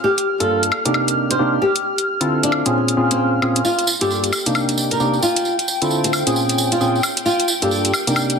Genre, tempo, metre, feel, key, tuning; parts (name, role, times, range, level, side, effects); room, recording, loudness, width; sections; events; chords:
UK garage, two-step garage; 133 BPM; 4/4; swing 61% on 16ths; G minor; A4 = 438 Hz
flamenco guitar; melody; 0.0-7.8 s; C4 to C5; -22 LUFS; left 1 dB; ping-pong delay
airy breathy pad; sustained chords; 0.0-8.4 s; G5 to F6; -25 LUFS; equal; chorus
electronic hi-hat and woodblock; drums; 0.2-8.4 s; -22 LUFS; left 1 dB
percussive organ stab; stabs; 0.4-8.4 s; G2 to A4; -20 LUFS; equal; lush chorus, ping-pong delay
tambourine; percussion; 3.6-8.4 s; -24 LUFS; right 4 dB
wet digital room reverb, RT60 1.0 s, digital ambience; dense, heavily limited modern master; -16 LUFS; side -6 dB against mid
0.0-8.4 A section
filter sweep on analog synth pad 0.0-8.4
0.0 Gm7; 0.7 Cm7; 1.6 Dm7; 2.7 Bbm7; 3.6 Gm7; 4.3 Cm7; 5.2 Dm7; 6.4 Bbm7; 7.3 Gm7